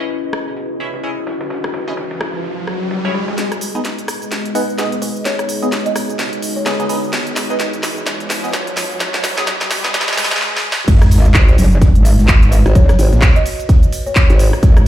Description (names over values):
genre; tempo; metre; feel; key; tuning
bass house; 128 BPM; 4/4; swing 59% on 16ths; G# minor; A4 = 442 Hz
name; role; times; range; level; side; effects
dark analog pad; sustained chords; 0.0-14.9 s; G#3 to D#5; -28 LUFS; left 2 dB; chorus, vintage 12-bit sampler grit, sidechain pumping
band-passed chord stab; stabs; 0.0-10.2 s; B3 to G#5; -24 LUFS; right 1 dB; phaser, sidechain pumping, tape echo
riser, swell and sub drop; sound effects; 0.6-12.8 s; none; -22 LUFS; equal; none
warbly tape-like pad; texture; 0.0-14.9 s; G#3 to D#5; -27 LUFS; equal; chorus, built-in reverb, sidechain pumping
dusty soul sampler-style drum kit; drums; 0.1-3.4, 10.9-14.8 s; hi-hat, ride cymbal, snare drum; -34 LUFS; equal; sidechain pumping on cymbals, high-pass filter on cymbals, low-pass filter on cymbals, studio reverb, sidechain pumping on hats, high-pass filter on hats, low-pass filter on hats, high-pass filter on snare, low-pass filter on snare
house drum kit; drums; 0.3-14.8 s; crash cymbal, handclaps, hi-hat, rim click, shaker, snare drum; -20 LUFS; equal; high-pass filter on snare, studio reverb, high-pass filter on hats, high-pass filter on perc, high-pass filter on cymbals
kalimba; melody; 5.0-6.7, 12.5-14.2 s; B4 to D#5; -24 LUFS; left 1 dB; tape echo
metallic wobble bass; bass; 10.9-14.9 s; F#1 to A#1; -12 LUFS; equal; chorus, overdrive, sidechain pumping
electronic kick drum; drums; 10.9-14.7 s; none; -10 LUFS; equal; studio reverb
formant-sweep wobble bass; bass; 11.3-14.5 s; G#1; -12 LUFS; equal; chorus, overdrive, sidechain pumping
room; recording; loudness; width
light reverb; played on a big sound system in a bare room, large studio reverb, high-pass filter; -13 LUFS; side -13 dB against mid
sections
0.0-3.4 A section; 3.4-10.9 B section; 10.9-14.9 C section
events
riser 0.6-3.4, 3.4-10.4; build-up 3.4-10.9; drum fill 3.4-10.4, 10.4-10.9; filter sweep on synth stab 3.4-10.9; filter sweep 3.4-10.9; swell 9.9-10.9; stop 10.4-10.9; drop 10.9-14.9; impact 10.9-12.8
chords
0.0 C#madd9; 3.4 G#m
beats
0.10 0.57 1.03 | 1.50 1.97 2.44 2.91 | 3.38 3.85 4.32 4.79 | 5.25 5.72 6.19 6.66 | 7.13 7.60 8.07 8.54 | 9.00 9.47 9.94 10.41 | 10.88 11.35 11.82 12.29 | 12.75 13.22 13.69 14.16 | 14.63